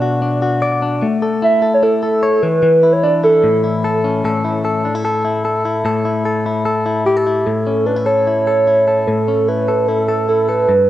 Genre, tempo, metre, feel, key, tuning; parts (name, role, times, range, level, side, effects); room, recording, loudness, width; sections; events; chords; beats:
indie pop; 149 BPM; 4/4; straight; A mixolydian; A4 = 439 Hz
warbly nostalgic lead; melody; 0.0-4.0, 7.0-10.9 s; G4 to E5; -14 LUFS; right 2 dB; chorus
direct-recorded clean electric guitar; arpeggios; 0.0-10.9 s; G2 to D5; -16 LUFS; left 2 dB; spring reverb, analog delay
moderate echo chamber reverb, RT60 1.3 s, digital ambience; worn, warbling old tape, cassette tape, warbly pitch drift; -13 LUFS; side -13 dB against mid
0.0-4.2 A section; 4.2-7.5 B section; 7.5-10.9 C section
0.0 Bm; 1.0 A; 2.4 E5; 3.4 A; 4.2 A5; 7.5 A
0.22 0.62 | 1.02 1.42 1.82 2.23 | 2.63 3.03 3.43 3.83 | 4.24 4.64 5.04 5.44 | 5.85 6.25 6.65 7.06 | 7.46 7.86 8.27 8.67 | 9.07 9.48 9.88 10.29 | 10.69